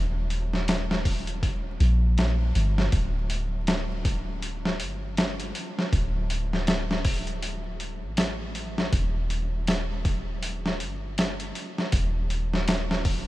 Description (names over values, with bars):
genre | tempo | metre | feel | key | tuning
trip hop | 80 BPM | 4/4 | swing 59% on 16ths | unclear | A4 = 440 Hz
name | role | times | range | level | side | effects
soft 808-style bass | bass | 0.0-13.3 s | D1 to Bb1 | -27 LUFS | equal | tube saturation
dusty soul sampler-style drum kit | drums | 0.3-13.3 s | hi-hat, kick drum, snare drum | -27 LUFS | equal | overdrive, vintage 12-bit sampler grit
room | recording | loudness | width
light reverb | vinyl crackle | -24 LUFS | side -17 dB against mid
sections
0.0-13.3 A section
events
none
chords
none